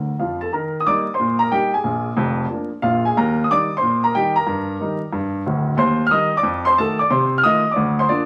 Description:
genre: jazz, stride piano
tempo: 182 BPM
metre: 4/4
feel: swing 65% on 8ths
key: Eb major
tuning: A4 = 440 Hz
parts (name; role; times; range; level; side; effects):
- warm baby grand piano; solo; 0.0-8.3 s; D1 to F6; -19 LUFS; equal; none
room: wet studio reverb, RT60 0.5 s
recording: vinyl crackle, lossy compression artefacts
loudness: -19 LUFS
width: mono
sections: 0.5-8.3 A section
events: grand piano fill 0.0-0.5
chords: 0.0 Bb; 0.5 Eb; 1.8 Bb7; 3.2 Eb; 4.5 Eb/G; 5.8 Cm/Eb; 6.4 F7b9; 7.1 F7/C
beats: 0.20 | 0.53 0.86 1.19 1.52 | 1.85 2.17 2.50 2.83 | 3.16 3.49 3.82 4.15 | 4.48 4.80 5.13 5.46 | 5.79 6.12 6.45 6.78 | 7.11 7.43 7.76 8.09

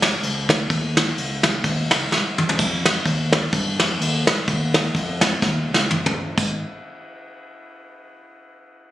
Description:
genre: uptempo gospel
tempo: 127 BPM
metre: 4/4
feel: swing 56% on 8ths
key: unclear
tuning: A4 = 440 Hz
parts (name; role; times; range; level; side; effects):
- fingered electric bass; bass; 0.0-6.6 s; F1 to G2; -25 LUFS; equal; none
- soft brush drum kit; drums; 0.0-6.5 s; crash cymbal, kick drum, ride cymbal, snare drum, toms; -19 LUFS; equal; none
room: moderate echo chamber reverb, RT60 1.9 s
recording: recorded on a phone in the room, studio reverb, compression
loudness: -18 LUFS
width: side -14 dB against mid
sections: 0.0-2.6 A section; 2.6-6.4 B section; 6.4-8.3 C section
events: drum fill 2.1-2.6, 5.4-6.4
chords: none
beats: 0.22 | 0.69 1.17 1.64 2.11 | 2.59 3.06 3.53 4.01 | 4.48 4.95 5.43 5.90 | 6.37

